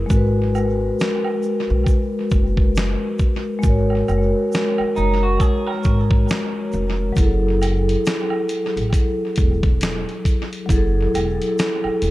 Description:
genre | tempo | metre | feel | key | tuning
lo-fi hip hop | 68 BPM | 4/4 | swing 60% on 16ths | unclear | A4 = 440 Hz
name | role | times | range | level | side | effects
vibraphone with soft mallets | accompaniment | 0.0-12.1 s | F#3 to C#5 | -21 LUFS | left 1 dB | cassette tape, low-pass filter, tape echo
upright bass | bass | 0.0-12.1 s | E1 to B1 | -21 LUFS | equal | none
dusty soul sampler-style drum kit | drums | 0.1-12.1 s | hi-hat, kick drum, snare drum | -20 LUFS | equal | tape echo
egg shaker and woodblock | percussion | 0.1-12.1 s | none | -34 LUFS | right 5 dB | tape echo
clean electric guitar | second line | 5.0-6.9 s | D#4 to A#4 | -27 LUFS | right 3 dB | low-pass filter, tape echo
room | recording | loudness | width
light reverb, small room ambience | echo-heavy mix | -17 LUFS | side -17 dB against mid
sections
0.0-12.1 A section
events
break 0.0-7.2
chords
0.1 G#m9; 7.2 F#m9

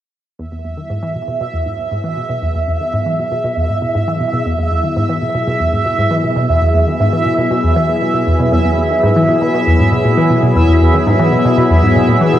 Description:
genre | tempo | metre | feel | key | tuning
ambient, sequencer-driven space music | 118 BPM | 4/4 | straight | E major | A4 = 439 Hz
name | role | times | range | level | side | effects
sweeping resonant pad | sustained chords | 0.4-12.4 s | F#3 to G#4 | -17 LUFS | left 2 dB | chorus, cassette tape
analog pluck | riff | 0.4-12.4 s | E2 to E3 | -15 LUFS | equal | chorus, cassette tape, ping-pong delay
bubbling stepped-filter texture | texture | 0.7-12.4 s | E5 | -18 LUFS | right 2 dB | chorus, built-in reverb, cassette tape, shimmer reverb
room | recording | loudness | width
wet small room reverb, RT60 0.5 s | home recording on cassette | -12 LUFS | side -12 dB against mid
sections
0.4-12.4 A section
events
fade-in on synth arpeggio sound 0.4-12.4; fade-in on analog synth pad 0.4-12.4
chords
0.4 E

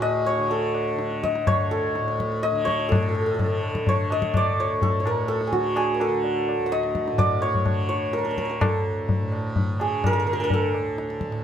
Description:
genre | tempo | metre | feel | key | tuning
indian classical, Hindustani | 126 BPM | 3/4 | straight | D raga puriya dhanashri | A4 = 441 Hz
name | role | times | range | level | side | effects
santur | melody | 0.0-11.4 s | F#4 to F#5 | -24 LUFS | equal | none
tanpura | drone | 0.0-11.4 s | D2 to D3 | -30 LUFS | right 1 dB | none
tabla | percussion | 0.0-11.4 s | none | -26 LUFS | left 2 dB | none
room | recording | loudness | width
moderate studio reverb, RT60 0.5 s | none | -21 LUFS | side -9 dB against mid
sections
0.0-2.9 A section; 2.9-11.4 B section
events
none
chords
none

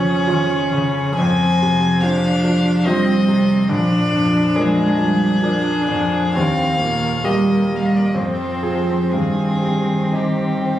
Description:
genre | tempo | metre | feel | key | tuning
classical, slow romantic movement for piano quartet | 59-73 BPM | 3/4 | rubato | unclear | A4 = 444 Hz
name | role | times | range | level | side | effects
warm violin | melody | 0.0-10.8 s | G4 to Ab5 | -23 LUFS | left 3 dB | none
dark cello | second line | 0.0-10.8 s | Db3 to Ab3 | -20 LUFS | right 1 dB | none
bright concert grand piano | accompaniment | 0.0-10.8 s | Bb1 to Db5 | -20 LUFS | equal | none
dark viola | accompaniment | 0.0-10.8 s | Bb3 to D4 | -23 LUFS | equal | none
room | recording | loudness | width
wet recital hall reverb, RT60 1.6 s | recorded on a phone in the room, studio reverb | -15 LUFS | side -12 dB against mid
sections
0.0-10.8 A section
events
none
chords
0.0 Db/F; 1.2 Fm; 3.7 Bb7; 6.4 Eb; 8.2 Fm; 9.1 Cm/G

